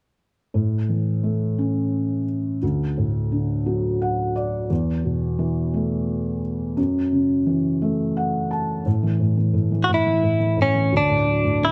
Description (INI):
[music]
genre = pop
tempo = 58 BPM (dotted quarters)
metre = 6/8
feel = straight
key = A major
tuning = A4 = 436 Hz
[part]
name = felt-muted upright piano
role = accompaniment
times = 0.5-11.7 s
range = D2 to A5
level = -23 LUFS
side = equal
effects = none
[part]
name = direct-recorded clean electric guitar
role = melody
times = 9.8-11.7 s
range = C#4 to F#4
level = -22 LUFS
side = equal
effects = none
[sound]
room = light reverb, studio reverb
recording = none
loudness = -22 LUFS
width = mono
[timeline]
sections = 0.5-8.9 A section; 8.9-11.7 B section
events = felt piano fill 3.7-4.7, 7.8-8.9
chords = 0.5 A; 2.6 D; 4.7 Esus4; 6.8 F#m7; 8.9 A5; 10.9 D